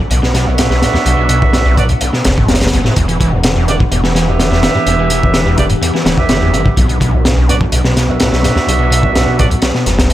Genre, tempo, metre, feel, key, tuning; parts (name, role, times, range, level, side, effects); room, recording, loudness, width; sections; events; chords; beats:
breakbeat, breaks; 126 BPM; 4/4; straight; E minor; A4 = 440 Hz
warbly tape-like pad; sustained chords; 0.0-10.1 s; E3 to F#5; -22 LUFS; equal; chorus, built-in reverb, sidechain pumping
overdriven acid bass; riff; 0.0-10.1 s; A1 to E3; -16 LUFS; equal; distortion, wide subtle chorus, tape echo
dark detuned saw bass; bass; 0.0-10.1 s; D1 to B1; -16 LUFS; equal
crunchy breakbeat drum kit; drums; 0.1-10.1 s; hi-hat, kick drum, snare drum; -14 LUFS; equal; dub echo
mellow horn section; stabs; 0.5-9.5 s; D4 to E5; -19 LUFS; right 3 dB; dub echo
little or no reverb; echo-heavy mix; -10 LUFS; side -13 dB against mid
0.0-10.1 A section
kick drops out 9.6-10.1
0.0 Bm; 3.0 Em7; 6.8 Bm
0.10 0.58 | 1.06 1.53 2.01 2.48 | 2.96 3.44 3.91 4.39 | 4.87 5.34 5.82 6.29 | 6.77 7.25 7.72 8.20 | 8.68 9.15 9.63 10.10